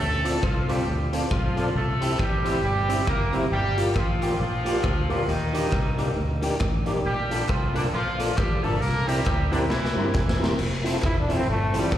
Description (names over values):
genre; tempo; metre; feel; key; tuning
ska; 136 BPM; 4/4; swing 59% on 8ths; F major; A4 = 441 Hz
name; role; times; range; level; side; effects
clear horn section; melody; 0.0-10.5 s; D3 to Bb4; -28 LUFS; right 1 dB; tape echo, plate reverb, slapback echo
fingered electric bass; bass; 0.0-12.0 s; E1 to G2; -27 LUFS; equal; none
electric guitar through a small old amp; accompaniment; 0.2-11.9 s; Bb3 to Bb4; -30 LUFS; right 1 dB; analog chorus, tape echo, plate reverb, slapback echo
mellow tonewheel organ; stabs; 0.2-11.9 s; Eb4 to E5; -32 LUFS; left 2 dB; chorus vibrato, slow rotary speaker, plate reverb, slapback echo
raw garage drum kit; drums; 0.3-12.0 s; crash cymbal, hi-hat, kick drum, rim click, snare drum; -27 LUFS; equal; none
group handclap; percussion; 3.9-12.0 s; none; barely audible; none; none
brilliant trombone; melody; 11.0-12.0 s; F3 to E4; -26 LUFS; equal; tape echo, plate reverb, slapback echo
room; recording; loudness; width
light reverb; live gig heard through the venue's PA, recital hall reverb; -22 LUFS; side -11 dB against mid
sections
0.0-10.6 A section; 10.6-12.0 B section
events
drum fill 9.7-10.6; trombone solo 10.6-12.0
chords
0.0 Dm7; 1.8 C; 3.5 Gm7; 5.3 Ebmaj7; 7.1 Bbmaj7; 8.8 C7; 10.6 Fmaj7